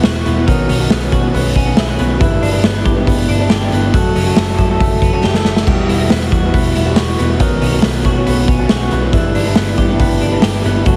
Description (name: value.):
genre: jangly indie pop.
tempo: 139 BPM.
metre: 4/4.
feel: straight.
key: unclear.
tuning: A4 = 440 Hz.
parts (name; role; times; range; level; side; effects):
electric guitar through a small old amp; accompaniment; 0.0-11.0 s; F#2 to B4; -22 LUFS; equal; none.
twelve-string electric guitar; arpeggios; 0.0-11.0 s; D#3 to A4; -21 LUFS; equal; analog delay.
vintage muted picked electric bass; bass; 0.0-11.0 s; E1 to B2; -20 LUFS; equal; none.
raw garage drum kit; drums; 0.0-11.0 s; crash cymbal, hi-hat, kick drum, snare drum; -17 LUFS; equal; none.
room: small room reverb.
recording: heavily compressed radio sound, multiband compression.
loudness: -14 LUFS.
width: mono.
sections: 0.0-11.0 A section.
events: drum fill 5.2-5.7.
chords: 0.5 Badd9; 2.2 G6; 3.9 F#m; 5.7 Emadd9; 7.4 Badd9; 9.1 G6.